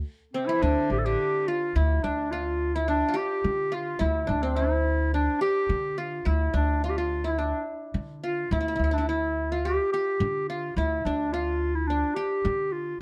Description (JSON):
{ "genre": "Turkish makam ensemble", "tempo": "106 BPM", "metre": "4/4", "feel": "straight", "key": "D makam ussak", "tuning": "A4 = 441 Hz", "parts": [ { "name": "warm clarinet", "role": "melody", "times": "0.3-13.0 s", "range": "C4 to A4", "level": "-30 LUFS", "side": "equal", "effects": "plate reverb" }, { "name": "qanun", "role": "second line", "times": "0.3-13.0 s", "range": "C4 to G4", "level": "-34 LUFS", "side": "equal", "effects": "none" }, { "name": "rich cello", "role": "second line", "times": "0.3-1.4 s", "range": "C3 to E3", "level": "-39 LUFS", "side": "equal", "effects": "none" }, { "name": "upright bass", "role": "bass", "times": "0.6-12.9 s", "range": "A1 to D3", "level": "-30 LUFS", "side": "equal", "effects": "none" } ], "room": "light reverb", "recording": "dark, warm production", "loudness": "-27 LUFS", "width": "mono", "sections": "0.0-1.7 A section; 1.7-13.0 B section", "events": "none", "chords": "none" }